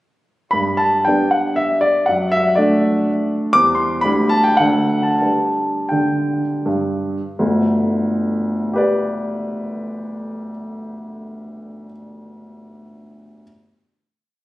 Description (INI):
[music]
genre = classical, romantic triple-time dance for piano with dotted rhythms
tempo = 78-133 BPM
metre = 3/4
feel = rubato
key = G major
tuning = A4 = 439 Hz
[part]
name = warm grand piano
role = solo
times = 0.5-13.4 s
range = G1 to D6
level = -16 LUFS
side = equal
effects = none
[sound]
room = wet recital hall reverb, RT60 1.5 s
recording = recorded on a phone in the room, studio reverb, compression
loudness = -15 LUFS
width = side -16 dB against mid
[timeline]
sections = 0.5-7.4 A section; 7.4-11.3 final chord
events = slowing down 2.8-7.4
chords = 0.5 G; 2.1 D/F#; 3.5 C/E; 4.0 G/D; 4.6 D; 5.2 G